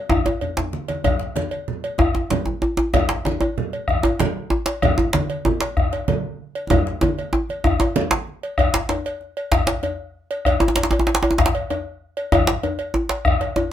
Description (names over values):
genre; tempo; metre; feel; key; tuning
west african traditional, West African drum ensemble; 128 BPM (dotted quarters); 12/8; straight; none; none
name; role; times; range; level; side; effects
bombo; percussion; 0.1-13.6 s; none; -22 LUFS; left 2 dB; none
congas; percussion; 0.1-8.4 s; none; -25 LUFS; right 4 dB; none
djembe; percussion; 0.1-13.7 s; none; -26 LUFS; left 3 dB; none
djembe; percussion; 0.1-13.7 s; none; -20 LUFS; right 1 dB; none
cowbell; percussion; 0.3-13.7 s; none; -27 LUFS; right 1 dB; none
room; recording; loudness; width
moderate studio reverb, RT60 0.6 s; minimal, uncompressed stereo recording; -19 LUFS; side -11 dB against mid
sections
0.0-8.6 A section; 8.6-13.7 B section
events
drum fill 0.3-1.0, 6.7-8.6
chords
none